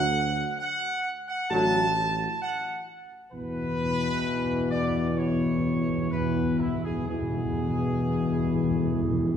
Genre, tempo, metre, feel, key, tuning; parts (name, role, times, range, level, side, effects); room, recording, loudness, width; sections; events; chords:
classical; 62-67 BPM; 4/4; straight; A4 = 439 Hz
warm trumpet section; melody; 0.0-9.4 s; E4 to A5; -30 LUFS; right 1 dB
clear trombone section; sustained chords; 0.0-9.4 s; B2 to F#3; -34 LUFS; right 2 dB
dark French horn section; sustained chords; 0.0-9.4 s; E3 to F#4; -32 LUFS; left 4 dB
mellow tuba; bass; 0.0-9.4 s; A1 to E2; -29 LUFS; right 1 dB
timpani; percussion; 3.3-9.4 s; E2; -31 LUFS; left 2 dB
moderate concert hall reverb, RT60 1.9 s; -24 LUFS; side -8 dB against mid
0.0-9.4 A section
timpani fill 3.3-9.4
0.0 D; 3.3 E